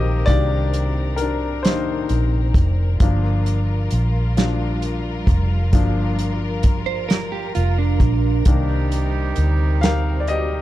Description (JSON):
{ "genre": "slow six-eight R&B", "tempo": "44 BPM (dotted quarters)", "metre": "6/8", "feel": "straight", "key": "C minor", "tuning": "A4 = 440 Hz", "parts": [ { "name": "warm baby grand piano", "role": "accompaniment", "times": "0.0-10.6 s", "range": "Eb3 to F5", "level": "-25 LUFS", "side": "left 4 dB", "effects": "none" }, { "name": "warm studio string section", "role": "sustained chords", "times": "0.0-10.6 s", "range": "C3 to Bb4", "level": "-30 LUFS", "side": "left 1 dB", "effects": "none" }, { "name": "vintage muted fingered electric bass", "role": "bass", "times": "0.0-10.6 s", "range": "F1 to D2", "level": "-20 LUFS", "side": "equal", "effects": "none" }, { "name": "warm soul drum kit", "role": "drums", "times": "0.3-10.5 s", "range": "hi-hat, kick drum, snare drum", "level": "-18 LUFS", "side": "equal", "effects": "none" }, { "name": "clean electric guitar", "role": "second line", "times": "6.9-8.4 s", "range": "D4 to C5", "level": "-25 LUFS", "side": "right 15 dB", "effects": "phaser" }, { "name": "mellow horn section", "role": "stabs", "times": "8.5-10.6 s", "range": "G3 to G4", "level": "-28 LUFS", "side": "right 7 dB", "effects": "none" } ], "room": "studio reverb", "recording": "dark, warm production", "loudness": "-17 LUFS", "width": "side -14 dB against mid", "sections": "0.0-10.6 A section", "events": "grand piano solo 0.0-10.6", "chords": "0.0 Cm9; 3.0 Gm7; 8.5 Cm9", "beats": "| 0.27 1.64 | 3.00 4.36 | 5.73 7.09 | 8.46 9.82" }